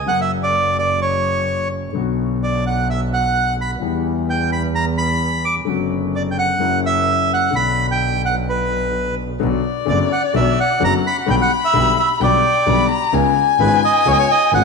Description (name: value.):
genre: tango.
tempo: 129 BPM.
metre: 4/4.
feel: rubato.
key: B harmonic minor.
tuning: A4 = 439 Hz.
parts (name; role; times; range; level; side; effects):
bandoneon; melody; 0.1-14.6 s; B4 to D6; -19 LUFS; right 3 dB; none.
warm concert grand piano; accompaniment; 0.1-14.6 s; F#1 to G4; -22 LUFS; left 8 dB; none.
rich double bass; bass; 0.1-14.6 s; F#1 to E2; -23 LUFS; right 4 dB; none.
warm violin; second line; 9.4-14.6 s; D5 to B5; -18 LUFS; left 7 dB; none.
room: wet echo chamber reverb, RT60 2.1 s.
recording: 1960s-style stereo.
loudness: -15 LUFS.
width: side -4 dB against mid.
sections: 0.0-9.4 A section; 9.4-14.6 A section.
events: none.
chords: 0.1 F#; 2.0 Bm; 3.8 Em; 5.7 Bm/F#; 6.6 F#7; 7.5 Bm; 11.3 G/B; 13.1 C#7.